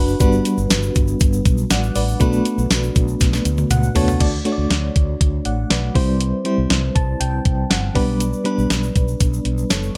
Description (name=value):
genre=1980s-style pop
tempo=120 BPM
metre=4/4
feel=straight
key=unclear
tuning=A4 = 438 Hz
part: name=FM electric piano with tremolo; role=accompaniment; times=0.0-10.0 s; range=G3 to A5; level=-23 LUFS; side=equal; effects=none
part: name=fretless electric bass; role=bass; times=0.0-10.0 s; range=F#1 to D2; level=-24 LUFS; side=equal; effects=none
part: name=tube shaker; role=percussion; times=0.1-4.2, 8.2-9.9 s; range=none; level=-39 LUFS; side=equal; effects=none
part: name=clean 12-bit digital drum machine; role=drums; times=0.2-10.0 s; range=crash cymbal, hi-hat, kick drum, snare drum, tambourine, toms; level=-21 LUFS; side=equal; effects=none
room=light reverb, digital ambience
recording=none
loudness=-18 LUFS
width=mono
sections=0.0-4.2 A section; 4.2-10.0 B section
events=drum fill 3.2-4.2; FM electric piano fill 3.5-4.2, 6.7-8.2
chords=0.2 Gmaj7; 2.2 Bm7; 4.2 D; 6.0 C; 8.0 G/B